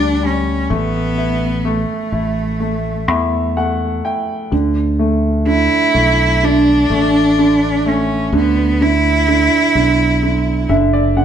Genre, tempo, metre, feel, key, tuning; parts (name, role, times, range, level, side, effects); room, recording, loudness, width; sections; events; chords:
pop ballad; 63 BPM; 4/4; straight; D major; A4 = 440 Hz
rich cello; melody; 0.0-10.7 s; A3 to E4; -16 LUFS; equal
clear grand piano; accompaniment; 0.0-11.2 s; D3 to G5; -17 LUFS; right 2 dB
fingered electric bass; bass; 0.0-11.2 s; F#1 to E2; -18 LUFS; equal
wet stone room reverb, RT60 1.3 s; band playing live in one room; -13 LUFS; side -9 dB against mid
0.0-11.2 A section
grand piano fill 2.6-4.5, 10.2-11.2
0.0 G5; 0.7 Asus2; 4.5 D5; 8.3 Bm